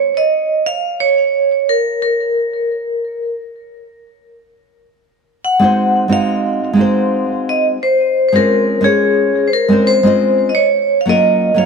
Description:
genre	chillout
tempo	88 BPM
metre	4/4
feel	swing 58% on 16ths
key	unclear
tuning	A4 = 440 Hz
part	vibraphone with hard mallets	melody	0.0-11.7 s	Ab4 to Gb5	-14 LUFS	equal	tape echo
part	nylon-string guitar	accompaniment	5.6-11.7 s	Gb3 to Eb5	-14 LUFS	equal	auto-pan
room	moderate plate reverb, RT60 2.2 s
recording	none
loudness	-12 LUFS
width	side -5 dB against mid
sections	0.0-11.7 A section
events	none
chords	0.0 N.C.; 5.1 Ab7; 7.8 Dbmaj7; 10.5 Gbmaj7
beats	0.30 0.99 1.67 | 2.35 3.03 3.71 4.40 | 5.08 5.76 6.44 7.12 | 7.80 8.49 9.17 9.85 | 10.53 11.21

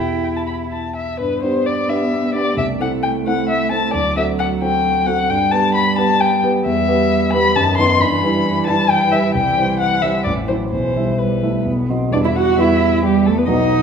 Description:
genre	quick classical-period movement for piano trio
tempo	132 BPM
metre	3/4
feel	rubato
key	G major, E minor from 6.7 s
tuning	A4 = 441 Hz
part	muted violin	melody	0.0-13.8 s	G4 to C6	-18 LUFS	left 4 dB	none
part	muted cello	second line	0.0-13.8 s	D#3 to F#4	-21 LUFS	right 6 dB	none
part	dark concert grand piano	accompaniment	0.0-13.8 s	A1 to E5	-19 LUFS	equal	none
room	wet recital hall reverb, RT60 1.5 s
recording	recorded in a church or concert hall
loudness	-15 LUFS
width	side -7 dB against mid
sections	0.0-1.2 A section; 1.2-12.1 B section; 12.1-13.8 A section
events	none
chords	0.0 Em; 1.2 G; 2.6 Am/C; 3.9 D7; 5.3 G; 6.7 Em; 7.5 B7/F#; 8.0 Em/G; 9.3 C; 10.3 F#m7b5/A; 10.7 Em/B; 11.7 B; 12.1 Em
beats	0.24 0.72 | 1.20 1.66 2.12 | 2.58 3.03 3.49 | 3.94 4.40 4.85 | 5.30 5.75 6.20 | 6.65 7.10 7.55 | 8.00 8.45 8.89 | 9.34 9.79 10.25 | 10.72 11.19 11.66 | 12.14 12.60 13.05 | 13.50

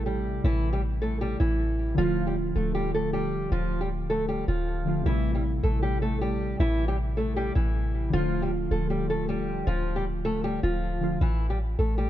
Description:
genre	hip hop, trap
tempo	156 BPM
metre	4/4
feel	half-time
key	A minor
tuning	A4 = 440 Hz
part	fingerpicked old ladder-braced acoustic guitar	melody	0.0-12.1 s	E3 to A4	-29 LUFS	equal	low-pass filter, digital delay
part	warbly lo-fi synth keys	accompaniment	0.0-11.2 s	C3 to F4	-31 LUFS	equal	chorus, low-pass filter
part	clean 808-style bass	bass	0.0-12.1 s	D1 to A1	-28 LUFS	equal	none
room	little or no reverb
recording	dark, warm production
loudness	-24 LUFS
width	side -12 dB against mid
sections	0.0-11.2 A section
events	none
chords	0.0 Am7; 2.0 Dm; 5.1 Am7; 8.1 Dm; 11.2 A5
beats	0.06 | 0.44 0.83 1.21 1.60 | 1.98 2.37 2.75 3.13 | 3.52 3.90 4.29 4.67 | 5.06 5.44 5.83 6.21 | 6.60 6.98 7.37 7.75 | 8.13 8.52 8.90 9.29 | 9.67 10.06 10.44 10.83 | 11.21 11.60 11.98

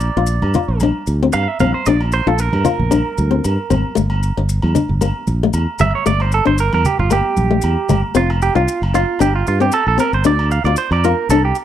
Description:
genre	highlife guitar band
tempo	114 BPM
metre	4/4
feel	swing 54% on 16ths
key	unclear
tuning	A4 = 440 Hz
part	clean electric guitar	arpeggios	0.0-11.6 s	F4 to F5	-19 LUFS	right 7 dB	slapback echo
part	fingered electric bass	bass	0.0-11.5 s	F1 to G2	-17 LUFS	equal	none
part	maracas	percussion	0.0-11.6 s	none	-31 LUFS	left 8 dB	none
part	flamenco guitar	accompaniment	0.2-11.5 s	A3 to F4	-18 LUFS	left 7 dB	none
part	agogo bells	percussion	0.4-11.4 s	none	-28 LUFS	right 2 dB	none
part	congas	percussion	0.4-8.0 s	none	-22 LUFS	right 2 dB	none
room	small room reverb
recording	dry, close 1970s-style studio recording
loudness	-14 LUFS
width	side -10 dB against mid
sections	0.0-8.2 A section; 8.2-11.6 B section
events	clean electric guitar solo 0.0-8.2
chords	0.0 Bb; 4.0 Gmadd9; 8.2 F5; 9.2 Gmadd9; 10.3 Dm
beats	0.29 0.82 1.34 | 1.87 2.39 2.92 3.44 | 3.96 4.49 5.01 5.54 | 6.06 6.59 7.11 7.63 | 8.16 8.68 9.21 9.73 | 10.25 10.78 11.30

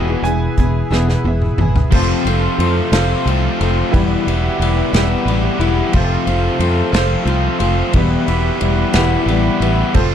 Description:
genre	folk rock and heartland rock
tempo	60 BPM (dotted quarters)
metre	6/8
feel	straight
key	unclear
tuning	A4 = 440 Hz
part	bright upright piano	second line	0.0-0.9 s	G5 to G#5	-26 LUFS	right 4 dB	none
part	bright concert grand piano	accompaniment	0.0-10.1 s	E4 to G#5	-27 LUFS	right 9 dB	none
part	picked twelve-string acoustic guitar	accompaniment	0.0-10.1 s	E2 to G#4	-20 LUFS	left 8 dB	none
part	accordion	sustained chords	0.0-10.1 s	G4 to C6	-26 LUFS	right 5 dB	light tremolo tuning
part	biting overdriven guitar	riff	0.0-10.1 s	E2 to F4	-20 LUFS	right 2 dB	none
part	fingered electric bass	bass	0.0-10.1 s	E1 to F2	-18 LUFS	equal	none
part	unplugged drum kit	drums	0.2-10.1 s	crash cymbal, hi-hat, kick drum, ride cymbal, snare drum, toms	-21 LUFS	equal	none
room	small room ambience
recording	dark, warm production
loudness	-13 LUFS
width	side -9 dB against mid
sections	0.0-1.9 A section; 1.9-10.1 B section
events	drum fill 0.9-1.9; grand piano fill 0.9-1.9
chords	0.0 E; 1.9 F; 3.9 Em; 5.9 F; 8.0 Em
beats	0.92 | 1.93 2.94 | 3.94 4.95 | 5.95 6.95 | 7.96 8.96 | 9.96

